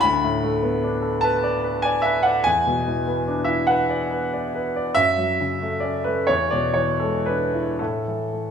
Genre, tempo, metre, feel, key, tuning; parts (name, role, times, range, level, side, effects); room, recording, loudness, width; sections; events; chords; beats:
classical, romantic nocturne for solo piano; 37-50 BPM (dotted quarters); 12/8; rubato; A4 = 440 Hz
clear concert grand piano; solo; 0.0-8.5 s; D2 to B5; -19 LUFS; equal
wet recital hall reverb, RT60 1.5 s; minimal, uncompressed stereo recording; -19 LUFS; side -7 dB against mid
0.0-8.5 A section
0.0 Bm7/D; 2.5 E7; 5.0 F#m; 6.3 E7; 7.8 A5
| 0.02 1.22 2.45 3.68 | 4.95 6.29 7.81